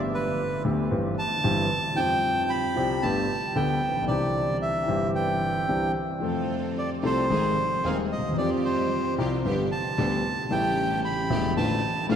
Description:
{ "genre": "tango", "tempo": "113 BPM", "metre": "4/4", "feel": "rubato", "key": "C major", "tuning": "A4 = 440 Hz", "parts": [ { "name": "warm concert grand piano", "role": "accompaniment", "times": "0.0-12.2 s", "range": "Eb1 to A4", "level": "-26 LUFS", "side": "left 1 dB", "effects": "none" }, { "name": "bandoneon", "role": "melody", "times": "0.1-12.2 s", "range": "B4 to B5", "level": "-27 LUFS", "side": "right 1 dB", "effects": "none" }, { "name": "bright studio string section", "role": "stabs", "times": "6.2-12.2 s", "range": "A3 to A4", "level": "-33 LUFS", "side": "right 4 dB", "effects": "none" } ], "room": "wet cathedral reverb, RT60 6.4 s", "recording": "in a vast, echoing space", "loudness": "-23 LUFS", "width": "side -8 dB against mid", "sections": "0.0-12.2 A section", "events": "none", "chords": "0.0 Gadd9; 0.9 C/G; 2.0 Fsus2; 3.0 Gadd9; 4.1 Cadd9; 6.2 F; 7.3 Ab; 8.4 Fsus2; 9.5 G; 10.5 A7; 11.6 Dm/A" }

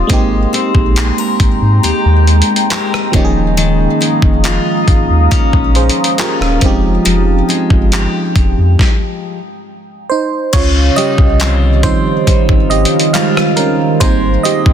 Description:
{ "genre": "contemporary R&B", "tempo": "69 BPM", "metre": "4/4", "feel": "straight", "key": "unclear", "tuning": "A4 = 440 Hz", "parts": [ { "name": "FM electric piano", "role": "accompaniment", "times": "0.0-14.7 s", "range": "Eb3 to F5", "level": "-16 LUFS", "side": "right 5 dB", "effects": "chorus" }, { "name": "deep dark ambient pad", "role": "sustained chords", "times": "0.0-14.7 s", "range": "C3 to Eb6", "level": "-18 LUFS", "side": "right 1 dB", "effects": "chorus, built-in reverb, sidechain pumping" }, { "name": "picked steel-string acoustic guitar", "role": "arpeggios", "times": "0.0-14.7 s", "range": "Db3 to Bb4", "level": "-19 LUFS", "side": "left 8 dB", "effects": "ping-pong delay" }, { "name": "saturated sub bass", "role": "bass", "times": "0.0-14.7 s", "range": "Eb1 to Ab2", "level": "-13 LUFS", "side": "equal", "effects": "none" }, { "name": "dusty soul sampler-style drum kit", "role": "drums", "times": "0.1-14.7 s", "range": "crash cymbal, handclaps, hi-hat, kick drum, rim click, snare drum", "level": "-14 LUFS", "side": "equal", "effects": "none" } ], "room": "little or no reverb", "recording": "dense, heavily limited modern master", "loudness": "-10 LUFS", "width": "side -9 dB against mid", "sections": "0.0-10.5 A section; 10.5-14.7 B section", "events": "stop 8.8-10.5; FM electric piano solo 10.5-14.7", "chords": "0.1 Abmaj9; 3.1 Eb9sus4; 6.6 Fm9; 10.5 Dbmaj9#11; 14.0 Abmaj9" }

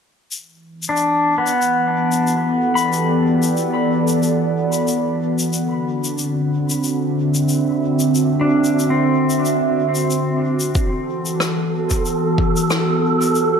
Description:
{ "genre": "ambient dub", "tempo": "92 BPM", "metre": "4/4", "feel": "swing 55% on 16ths", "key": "E minor", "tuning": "A4 = 439 Hz", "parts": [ { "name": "warbly tape-like pad", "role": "sustained chords", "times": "0.9-13.6 s", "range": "D3 to E5", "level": "-18 LUFS", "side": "right 1 dB", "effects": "chorus, built-in reverb, vintage 12-bit sampler grit" }, { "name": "shaker and rim click", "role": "drums", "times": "0.3-13.5 s", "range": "none", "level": "-25 LUFS", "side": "left 3 dB", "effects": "none" }, { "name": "pedal steel guitar", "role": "arpeggios", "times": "0.9-10.9 s", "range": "B3 to B5", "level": "-22 LUFS", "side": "left 2 dB", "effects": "low-pass filter, dub echo" }, { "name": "electronic kick drum", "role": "drums", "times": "10.8-12.5 s", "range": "none", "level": "-20 LUFS", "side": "equal", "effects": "none" }, { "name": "wind-like tuned noise texture", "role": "texture", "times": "11.3-13.6 s", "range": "A4", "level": "-21 LUFS", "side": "right 4 dB", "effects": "built-in reverb" } ], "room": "moderate echo chamber reverb, RT60 1.6 s, small room ambience", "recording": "none", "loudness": "-16 LUFS", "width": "side -6 dB against mid", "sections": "0.3-10.8 A section; 10.8-13.6 B section", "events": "filter sweep on pedal steel guitar 0.3-10.8", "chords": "0.3 Em11; 5.5 D9; 10.8 Em11" }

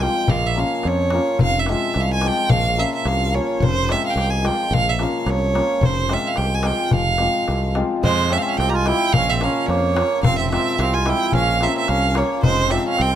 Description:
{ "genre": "balkan folk, Balkan wedding band", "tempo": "109 BPM", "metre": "2/4", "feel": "swing 55% on 16ths", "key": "F harmonic minor", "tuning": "A4 = 440 Hz", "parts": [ { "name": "clear violin", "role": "melody", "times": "0.0-13.2 s", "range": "C5 to Bb5", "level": "-21 LUFS", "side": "right 4 dB", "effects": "none" }, { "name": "hammered dulcimer", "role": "accompaniment", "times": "0.0-13.2 s", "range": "F3 to F4", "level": "-24 LUFS", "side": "left 5 dB", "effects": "none" }, { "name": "modern bright fingered electric bass", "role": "bass", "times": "0.0-13.2 s", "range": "F1 to F2", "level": "-22 LUFS", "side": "equal", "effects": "none" }, { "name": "darbuka", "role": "percussion", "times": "0.3-13.1 s", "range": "none", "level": "-24 LUFS", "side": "left 2 dB", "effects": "none" }, { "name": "accordion", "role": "second line", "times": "8.0-13.2 s", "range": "Ab3 to G4", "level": "-25 LUFS", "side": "right 6 dB", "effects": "none" } ], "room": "light reverb", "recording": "close, detailed microphones", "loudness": "-17 LUFS", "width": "side -10 dB against mid", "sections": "0.0-8.0 A section; 8.0-13.2 A section", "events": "none", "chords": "0.3 Bbm; 1.4 Fm; 2.5 Bbm; 3.6 Fm; 4.7 Bbm; 5.8 Fm; 9.1 Bbm; 10.2 Fm; 11.3 Bbm; 12.4 Fm" }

